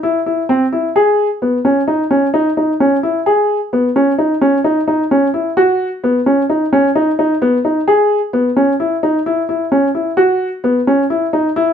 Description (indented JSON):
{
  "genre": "progressive instrumental, progressive",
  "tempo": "130 BPM",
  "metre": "5/4",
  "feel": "straight",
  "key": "unclear",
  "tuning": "A4 = 440 Hz",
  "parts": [
    { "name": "dark baby grand piano", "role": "solo", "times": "0.0-11.7 s", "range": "B3 to G#4", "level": "-12 LUFS", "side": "equal", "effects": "none" }
  ],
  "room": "wet studio reverb, RT60 0.6 s",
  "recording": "nothing above 10.5 kHz",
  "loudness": "-12 LUFS",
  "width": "side -8 dB against mid",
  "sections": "0.0-10.2 A section; 10.2-11.7 B section",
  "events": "none",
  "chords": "none"
}